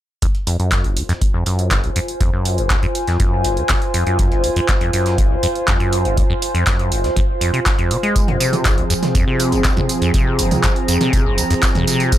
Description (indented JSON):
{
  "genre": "acid house",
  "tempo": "121 BPM",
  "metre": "4/4",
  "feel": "straight",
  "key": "F phrygian",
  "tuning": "A4 = 437 Hz",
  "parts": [
    { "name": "acid bass, saw", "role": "riff", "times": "0.2-12.2 s", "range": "F1 to Ab3", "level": "-20 LUFS", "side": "equal", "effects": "tube saturation, sidechain pumping, ping-pong delay" },
    { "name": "breakbeat sampler-style drum kit", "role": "drums", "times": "0.2-12.2 s", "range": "hi-hat, snare drum", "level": "-32 LUFS", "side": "right 1 dB", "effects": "none" },
    { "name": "electronic kick drum", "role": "drums", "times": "0.2-12.2 s", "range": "none", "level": "-18 LUFS", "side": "equal", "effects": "none" },
    { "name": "punchy analog drum machine", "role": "drums", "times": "0.2-12.2 s", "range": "handclaps, hi-hat, tambourine, toms", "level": "-22 LUFS", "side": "right 1 dB", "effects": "none" },
    { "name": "warbly tape-like pad", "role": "texture", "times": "1.2-12.2 s", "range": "F4 to Bb5", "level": "-23 LUFS", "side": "equal", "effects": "chorus, built-in reverb, sidechain pumping" },
    { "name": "warm analog pad", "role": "sustained chords", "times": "8.2-12.2 s", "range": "F3 to Ab4", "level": "-21 LUFS", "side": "right 1 dB", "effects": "chorus, sidechain pumping" }
  ],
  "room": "light reverb",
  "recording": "none",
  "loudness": "-15 LUFS",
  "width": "side -12 dB against mid",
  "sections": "0.2-12.2 A section",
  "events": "none",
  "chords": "0.2 Fm",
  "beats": "| 0.22 0.72 1.22 1.71 | 2.21 2.70 3.20 3.69 | 4.19 4.69 5.18 5.68 | 6.17 6.67 7.17 7.66 | 8.16 8.65 9.15 9.64 | 10.14 10.64 11.13 11.63 | 12.12"
}